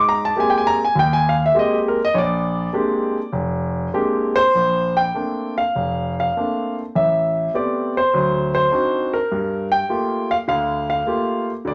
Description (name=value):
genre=solo jazz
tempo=101 BPM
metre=4/4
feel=swing 69% on 8ths, rubato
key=Bb major from 4.6 s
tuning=A4 = 440 Hz
part: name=warm concert grand piano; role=solo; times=0.0-11.7 s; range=F1 to D6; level=-20 LUFS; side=equal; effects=none
room=wet studio reverb, RT60 0.5 s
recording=none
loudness=-20 LUFS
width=mono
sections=0.0-4.6 A section; 4.6-11.7 B section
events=grand piano solo 0.0-4.6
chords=0.0 Abmaj9; 2.2 Bb13; 4.6 Bbmaj9; 7.0 Am9; 8.1 D7b9; 9.3 Gm9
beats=0.38 0.97 1.56 | 2.16 2.75 3.34 3.95 | 4.56 5.16 5.76 6.36 | 6.96 7.55 8.14 8.73 | 9.32 9.90 10.49 11.08 | 11.67